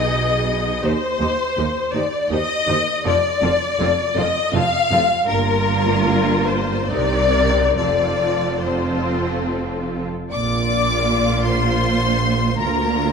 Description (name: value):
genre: classical, slow romantic movement for string orchestra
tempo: 67-87 BPM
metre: 3/4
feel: rubato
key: Bb major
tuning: A4 = 438 Hz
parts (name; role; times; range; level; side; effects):
- rich studio violin section; melody; 0.0-13.1 s; A4 to D6; -26 LUFS; left 4 dB; none
- rich studio violin section; second line; 0.0-13.1 s; Bb4 to F5; -20 LUFS; left 4 dB; none
- clear studio viola section; accompaniment; 0.0-13.1 s; Bb3 to Ab4; -25 LUFS; right 1 dB; none
- clear studio cello section; bass; 0.0-13.1 s; D2 to C3; -25 LUFS; right 4 dB; none
- rich studio double bass section; bass; 0.0-13.1 s; F1 to Eb2; -24 LUFS; right 3 dB; none
room: moderate concert hall reverb, RT60 1.9 s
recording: dark, warm production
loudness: -17 LUFS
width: side -6 dB against mid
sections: 0.0-10.3 A section; 10.3-13.1 B section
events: none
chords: 0.0 Abm/Cb; 0.8 Cm/Eb; 3.1 F; 5.3 Gm7; 6.9 Cm7; 7.8 F; 10.3 Bb; 12.6 Bb/D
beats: 0.14 | 0.84 1.58 2.32 | 3.05 3.80 4.55 | 5.28 6.07 6.90 | 7.77 8.63 9.48 | 10.31 11.07 11.83 | 12.59